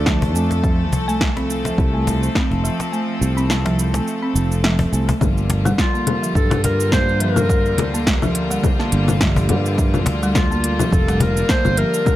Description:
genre	organic downtempo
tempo	105 BPM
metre	4/4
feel	swing 55% on 16ths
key	G minor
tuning	A4 = 440 Hz
part	mellow clarinet	melody	0.0-0.4, 5.8-12.2 s	F4 to C5	-24 LUFS	equal	tape echo, shimmer reverb
part	bright chamber string section	sustained chords	0.0-12.2 s	D3 to A4	-26 LUFS	left 1 dB	sidechain pumping, shimmer reverb
part	folk marimba with medium hard mallets	arpeggios	0.0-12.2 s	F3 to C4	-23 LUFS	equal	digital delay
part	sustaining fretless electric bass	bass	0.0-11.8 s	F1 to G2	-20 LUFS	equal	none
part	deep house drum kit	drums	0.1-12.2 s	congas, hi-hat, shaker, snare drum	-22 LUFS	left 2 dB	none
part	electronic kick drum	drums	0.1-12.2 s	none	-20 LUFS	equal	none
part	cajon	percussion	0.2-11.3 s	none	-24 LUFS	left 2 dB	none
room	light reverb, small room ambience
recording	none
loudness	-16 LUFS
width	side -14 dB against mid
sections	0.0-5.2 A section; 5.2-12.2 B section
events	kick drops out 2.9-5.2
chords	0.0 Dm; 0.6 F; 5.2 Gm7

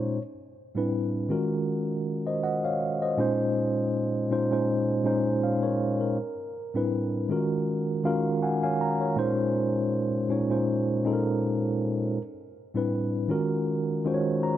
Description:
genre	R&B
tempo	80 BPM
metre	4/4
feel	swing 55% on 16ths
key	Bb minor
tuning	A4 = 440 Hz
part	mellow tine electric piano	solo	0.0-14.6 s	A2 to Bb5	-25 LUFS	equal	slow stereo tremolo
room	light reverb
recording	none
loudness	-24 LUFS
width	side -12 dB against mid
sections	0.0-14.6 A section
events	tine electric piano fill 7.7-9.2, 14.0-14.6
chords	0.2 Am11; 1.3 Ebm11; 3.2 Bbm11; 6.2 Am11; 7.3 Ebm11; 9.2 Bbm11; 12.2 Am11; 13.3 Ebm11

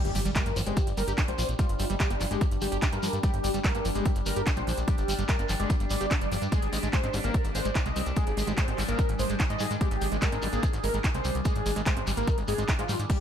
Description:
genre	psychedelic trance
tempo	146 BPM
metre	4/4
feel	straight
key	unclear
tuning	A4 = 440 Hz
part	wide unison lead	melody	0.0-13.2 s	F4 to Eb5	-34 LUFS	equal	phaser, sidechain pumping, ping-pong delay
part	overtone-sweeping drone	sustained chords	0.6-13.2 s	G3 to D4	-37 LUFS	equal	chorus, built-in reverb, phaser, sidechain pumping
part	screaming distorted acid line	riff	0.0-13.2 s	F3 to G4	-35 LUFS	moving between left 5 dB and right 5 dB	distortion, chorus, auto-pan, sidechain pumping, ping-pong delay
part	fat analog bass	bass	0.0-13.1 s	G1 to Ab2	-31 LUFS	equal	tube saturation
part	big-room dance drum kit	drums	0.0-13.2 s	crash cymbal, handclaps, hi-hat	-35 LUFS	right 1 dB	overdrive
part	impact	sound effects	0.0-1.6 s	none	-38 LUFS	equal	none
part	deep dark ambient pad	texture	0.0-13.2 s	Eb3 to Eb6	-38 LUFS	left 1 dB	chorus, built-in reverb, sidechain pumping
part	shekere	percussion	0.1-13.2 s	none	-39 LUFS	left 2 dB	none
part	electronic kick drum	drums	0.4-13.2 s	none	-27 LUFS	equal	none
part	formant-sweep wobble bass	second line	0.6-2.0, 7.1-8.8 s	G3 to D4	-45 LUFS	right 1 dB	none
room	little or no reverb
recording	none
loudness	-25 LUFS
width	side -9 dB against mid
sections	0.0-13.2 A section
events	impact 0.0-1.6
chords	0.0 G5; 6.5 Ab5

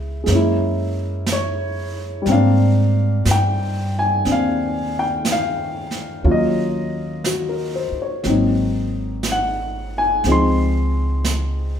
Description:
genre	jazz ballad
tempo	60 BPM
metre	4/4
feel	swing 67% on 8ths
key	unclear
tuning	A4 = 440 Hz
part	warm baby grand piano	accompaniment	0.0-11.8 s	F3 to C6	-20 LUFS	left 2 dB	none
part	upright bass	bass	0.0-11.8 s	Ab1 to Ab2	-21 LUFS	right 1 dB	none
part	jazz brush drum kit	drums	0.3-11.8 s	brushed snare drum, hi-hat, snare drum	-27 LUFS	right 3 dB	none
room	moderate large studio reverb, RT60 1.1 s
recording	band playing live in one room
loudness	-17 LUFS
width	side -8 dB against mid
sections	0.0-11.8 A section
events	none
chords	0.3 Gb9; 2.3 Abmaj9#11; 6.2 Ebm9; 8.2 Ab7; 10.2 Dbmaj7

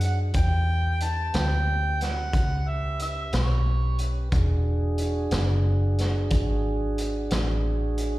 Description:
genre	slow blues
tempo	60 BPM (dotted quarters)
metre	12/8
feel	straight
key	unclear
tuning	A4 = 441 Hz
part	mellow harmonica	melody	0.0-4.1 s	C#5 to A5	-30 LUFS	right 1 dB	overdrive, slapback echo
part	tonewheel organ	sustained chords	0.0-8.2 s	C#4 to B4	-32 LUFS	right 2 dB	slow rotary speaker
part	vintage muted fingered electric bass	bass	0.0-8.2 s	E1 to F#2	-24 LUFS	equal	none
part	raw garage drum kit	drums	0.0-8.1 s	hi-hat, kick drum, snare drum	-29 LUFS	equal	none
room	little or no reverb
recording	live gig heard through the venue's PA, recital hall reverb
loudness	-22 LUFS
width	side -17 dB against mid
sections	0.0-8.2 A section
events	none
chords	0.4 Em13; 4.3 E9

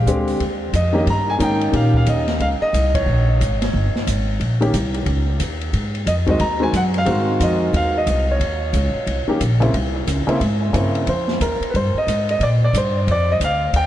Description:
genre	jazz piano trio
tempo	180 BPM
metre	4/4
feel	swing 63% on 8ths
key	Eb mixolydian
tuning	A4 = 440 Hz
part	warm baby grand piano	melody	0.0-13.9 s	Db3 to Bb5	-20 LUFS	equal	analog delay
part	upright bass	bass	0.0-13.9 s	G1 to Bb2	-19 LUFS	equal	none
part	open jazz drum kit	drums	0.1-13.8 s	hi-hat, kick drum, ride cymbal, snare drum	-27 LUFS	left 1 dB	none
room	moderate huge ambient reverb, RT60 5.2 s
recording	dreamy mix soaked in reverb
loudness	-16 LUFS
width	side -12 dB against mid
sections	0.4-13.9 A section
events	band accent 2.9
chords	0.4 Eb7; 5.7 Ab7; 8.4 Eb7(no3); 9.7 C7b9; 11.1 Fm7; 12.4 Bb

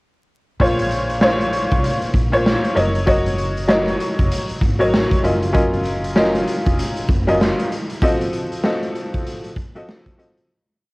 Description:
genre	hip hop, boom-bap hip-hop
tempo	97 BPM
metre	4/4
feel	swing 60% on 16ths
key	Bb harmonic minor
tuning	A4 = 440 Hz
part	clear upright piano	accompaniment	0.6-10.5 s	Bb2 to Eb5	-19 LUFS	left 1 dB	cassette tape, high-pass filter, low-pass filter
part	upright bass	bass	0.6-7.5 s	F1 to C2	-24 LUFS	equal	none
part	raw garage drum kit	drums	0.6-10.5 s	hi-hat, kick drum, snare drum	-20 LUFS	equal	cassette tape
room	light reverb, small room ambience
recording	home recording on cassette, vinyl crackle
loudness	-16 LUFS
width	side -25 dB against mid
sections	0.6-10.5 verse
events	break 8.0-10.5; fade-out 8.0-10.5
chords	0.6 Bbmadd9; 2.8 Gb6; 5.2 Ebm7/Gb; 8.0 F7b9

